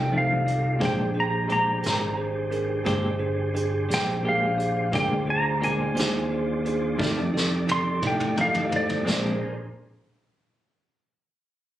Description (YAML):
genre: slow blues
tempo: 58 BPM (dotted quarters)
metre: 12/8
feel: straight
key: Bb mixolydian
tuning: A4 = 440 Hz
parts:
  - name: clean lap steel guitar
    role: melody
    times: 0.0-9.1 s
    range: D5 to C6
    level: -26 LUFS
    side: equal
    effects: none
  - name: bell-like tine electric piano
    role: accompaniment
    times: 0.0-9.4 s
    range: D4 to Eb5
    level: -31 LUFS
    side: right 4 dB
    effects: none
  - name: tonewheel organ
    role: sustained chords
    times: 0.0-9.5 s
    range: D4 to D5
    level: -32 LUFS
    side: equal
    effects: slow rotary speaker, chorus vibrato
  - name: fingered electric bass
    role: bass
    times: 0.0-9.4 s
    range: G1 to A2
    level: -28 LUFS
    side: equal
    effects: none
  - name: clean electric guitar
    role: accompaniment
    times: 0.1-9.3 s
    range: F2 to G4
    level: -30 LUFS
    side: left 3 dB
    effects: tremolo
  - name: vintage brush drum kit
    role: drums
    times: 0.5-9.2 s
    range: hi-hat, kick drum, snare drum, toms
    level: -30 LUFS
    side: equal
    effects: none
room: light reverb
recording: recorded on a phone in the room, club reverb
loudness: -22 LUFS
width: side -13 dB against mid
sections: 0.0-9.1 A section; 9.1-11.8 B section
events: electric slide guitar solo 0.0-9.1; drum fill 7.0-9.1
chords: 0.0 F13; 0.8 Bb13; 7.0 F13; 9.1 Bb9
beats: | 0.82 1.84 2.87 3.90 | 4.93 5.96 6.99 8.03 | 9.06